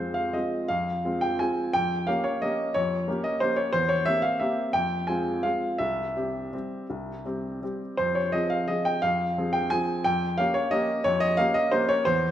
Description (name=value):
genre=classical, piano waltz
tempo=160-190 BPM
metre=3/4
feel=rubato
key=F minor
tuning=A4 = 440 Hz
part: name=clear baby grand piano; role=solo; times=0.0-12.3 s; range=C2 to Ab5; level=-24 LUFS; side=equal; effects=none
room=wet recital hall reverb, RT60 1.7 s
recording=none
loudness=-24 LUFS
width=side -11 dB against mid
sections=0.0-12.3 A section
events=none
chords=0.0 Fm; 1.7 Gm7b5/F; 3.7 C7/E; 4.7 Fm; 5.8 C; 8.0 Fm; 10.1 Gm7b5/F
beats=0.34 | 0.69 1.04 1.40 | 1.74 2.07 2.42 | 2.75 3.08 3.41 | 3.74 4.06 4.41 | 4.75 5.09 5.44 | 5.80 6.16 6.53 | 6.90 7.25 7.62 | 7.98 8.34 8.69 | 9.03 9.37 9.71 | 10.06 10.39 10.72 | 11.05 11.38 11.73 | 12.07